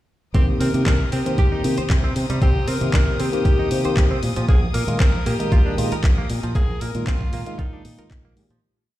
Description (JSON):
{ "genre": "nu-disco, nu disco", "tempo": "116 BPM", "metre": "4/4", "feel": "straight", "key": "C minor", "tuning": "A4 = 440 Hz", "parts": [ { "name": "bright tenor saxophone", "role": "melody", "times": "0.3-8.4 s", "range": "Eb4 to Bb4", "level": "-29 LUFS", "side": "left 1 dB", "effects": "ping-pong delay" }, { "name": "bright tine electric piano", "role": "accompaniment", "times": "0.3-8.5 s", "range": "Eb3 to C5", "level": "-26 LUFS", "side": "left 1 dB", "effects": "phaser, sidechain pumping, tape echo" }, { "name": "rich chamber string section", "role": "sustained chords", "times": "0.3-8.6 s", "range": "Bb4 to Eb6", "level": "-36 LUFS", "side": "left 4 dB", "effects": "sidechain pumping" }, { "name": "fingered electric bass with an envelope filter", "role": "bass", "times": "0.3-8.6 s", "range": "Bb1 to C3", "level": "-23 LUFS", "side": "equal", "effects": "none" }, { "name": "electronic kick drum", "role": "drums", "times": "0.3-8.2 s", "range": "none", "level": "-18 LUFS", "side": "equal", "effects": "small room reverb" }, { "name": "house drum kit", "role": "drums", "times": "0.3-8.6 s", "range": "handclaps, hi-hat", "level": "-31 LUFS", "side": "left 1 dB", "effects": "small room reverb" }, { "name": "direct-recorded clean electric guitar", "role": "riff", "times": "0.4-8.6 s", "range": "F3 to C5", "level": "-32 LUFS", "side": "right 2 dB", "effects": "wide subtle chorus, tape echo" } ], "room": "little or no reverb", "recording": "played on a big sound system in a bare room, stone room reverb", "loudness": "-17 LUFS", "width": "side -15 dB against mid", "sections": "0.3-8.6 drop", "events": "drop 0.3-8.6; fade-out 5.9-8.6", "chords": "0.3 Cm7; 4.2 Bb7sus4" }